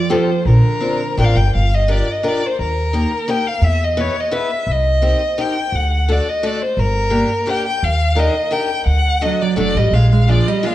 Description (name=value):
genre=musette waltz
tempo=171 BPM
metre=3/4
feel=straight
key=G minor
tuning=A4 = 438 Hz
part: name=rich violin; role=melody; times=0.0-10.7 s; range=Bb4 to G5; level=-19 LUFS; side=left 1 dB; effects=none
part: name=archtop guitar, miked and amplified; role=second line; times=0.0-1.2, 9.3-10.7 s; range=D3 to Ab3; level=-20 LUFS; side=right 7 dB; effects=none
part: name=picked acoustic archtop guitar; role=accompaniment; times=0.1-10.7 s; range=A3 to B4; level=-22 LUFS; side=left 2 dB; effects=none
part: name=upright bass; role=bass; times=0.5-10.4 s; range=F#1 to E2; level=-16 LUFS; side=equal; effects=none
room=moderate recital hall reverb, RT60 1.6 s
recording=dark, warm production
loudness=-14 LUFS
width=side -14 dB against mid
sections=0.0-1.5 A section; 1.5-10.7 B section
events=none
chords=0.5 Bbadd9; 1.5 Gm7; 2.6 Eb; 3.6 E; 4.7 Cm7; 5.7 D; 6.8 Gm; 7.8 Ebmaj7; 8.9 D; 9.9 Bb7